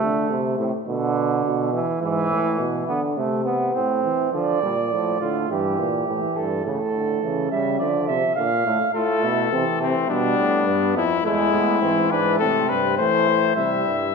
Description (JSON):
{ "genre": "classical, imitative canzona for brass ensemble", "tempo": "104 BPM", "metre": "4/4", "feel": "straight", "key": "D minor", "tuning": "A4 = 439 Hz", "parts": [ { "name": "clear trombone", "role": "accompaniment", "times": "0.0-14.1 s", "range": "C3 to C4", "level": "-24 LUFS", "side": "right 3 dB", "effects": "none" }, { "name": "warm euphonium", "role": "bass", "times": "0.0-14.1 s", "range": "E2 to E3", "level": "-25 LUFS", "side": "equal", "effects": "none" }, { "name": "mellow flugelhorn", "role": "second line", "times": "4.3-14.1 s", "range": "A3 to F5", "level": "-25 LUFS", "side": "right 5 dB", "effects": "none" }, { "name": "warm cornet", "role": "melody", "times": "8.9-14.1 s", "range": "C4 to E5", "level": "-21 LUFS", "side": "left 9 dB", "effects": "none" } ], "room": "moderate concert hall reverb, RT60 2.2 s", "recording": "minimal, uncompressed stereo recording", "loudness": "-19 LUFS", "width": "side -4 dB against mid", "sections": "0.0-4.3 A section; 4.3-13.6 B section", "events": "none", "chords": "0.0 Am; 0.9 Bmadd11; 2.0 E/G#; 3.2 Am/C; 4.3 Dm; 5.5 Edim/G; 6.7 A; 7.8 Dm; 8.9 Am; 10.1 Bdim; 11.2 E; 12.4 Am; 13.6 C", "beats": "0.31 0.88 1.45 | 2.02 2.60 3.17 3.75 | 4.34 4.92 5.50 6.08 | 6.66 7.24 7.80 8.38 | 8.95 9.53 10.10 10.67 | 11.24 11.82 12.41 12.99 | 13.57" }